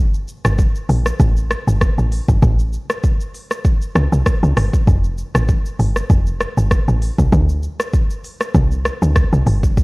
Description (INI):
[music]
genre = afrobeats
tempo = 98 BPM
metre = 4/4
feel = swing 55% on 16ths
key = unclear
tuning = A4 = 440 Hz
[part]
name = woody log drum bass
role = bass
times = 0.0-9.8 s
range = F1 to D2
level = -16 LUFS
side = equal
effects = transformer saturation
[part]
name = afro-pop drum kit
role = drums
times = 0.1-9.8 s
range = hi-hat, kick drum, rim click, shaker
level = -17 LUFS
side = equal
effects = none
[sound]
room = little or no reverb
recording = worn, warbling old tape, cassette tape, warbly pitch drift, lossy compression artefacts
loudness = -14 LUFS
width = side -26 dB against mid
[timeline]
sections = 0.0-9.8 A section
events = none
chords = none